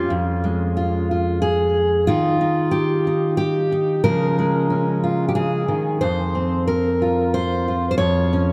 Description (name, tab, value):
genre	folk, solo fingerstyle acoustic guitar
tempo	91 BPM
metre	3/4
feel	straight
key	unclear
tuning	A4 = 438 Hz
part	fingerpicked steel-string acoustic guitar	solo	0.0-8.5 s	F2 to Db5	-20 LUFS	equal	diffuse ambient delay
room	wet plate reverb, RT60 2.9 s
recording	dreamy mix soaked in reverb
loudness	-20 LUFS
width	mono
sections	0.0-8.5 A section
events	none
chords	0.1 Db/F; 2.1 N.C.; 4.0 Bbm7/Db; 6.0 F5; 8.0 Db/F